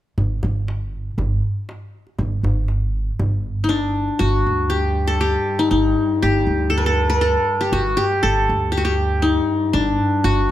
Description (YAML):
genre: Arabic maqam ensemble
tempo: 119 BPM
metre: 4/4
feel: straight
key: G maqam suznak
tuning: A4 = 441 Hz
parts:
  - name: upright bass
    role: bass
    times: 0.2-10.5 s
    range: G1 to D2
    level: -22 LUFS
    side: right 1 dB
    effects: none
  - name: darbuka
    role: percussion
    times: 0.2-4.1 s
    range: none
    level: -23 LUFS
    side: equal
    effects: none
  - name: qanun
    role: melody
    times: 3.6-10.5 s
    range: D4 to Bb4+50c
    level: -18 LUFS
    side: left 2 dB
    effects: none
  - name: muted cello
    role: drone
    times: 4.2-10.5 s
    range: G2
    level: -27 LUFS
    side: right 1 dB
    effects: none
room: light reverb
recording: none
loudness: -17 LUFS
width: side -13 dB against mid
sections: 0.2-4.2 A section; 4.2-10.5 B section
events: none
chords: none